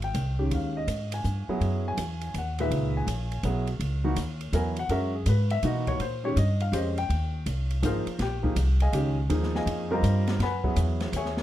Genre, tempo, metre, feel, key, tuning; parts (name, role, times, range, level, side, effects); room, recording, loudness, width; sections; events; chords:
modal jazz; 164 BPM; 3/4; swing 66% on 8ths; Bb dorian; A4 = 440 Hz
warm concert grand piano; accompaniment; 0.0-11.4 s; Bb2 to Cb6; -29 LUFS; equal
upright bass; bass; 0.0-11.4 s; Ab1 to Cb3; -27 LUFS; equal
open jazz drum kit; drums; 0.0-11.4 s; hi-hat, kick drum, ride cymbal, snare drum; -36 LUFS; equal
light reverb; dark, warm production; -25 LUFS; side -13 dB against mid
0.0-11.4 A section
0.0 Bb9sus4 (rootless); 1.6 Gb9sus4; 6.0 Bb9sus4; 10.4 Gb9sus4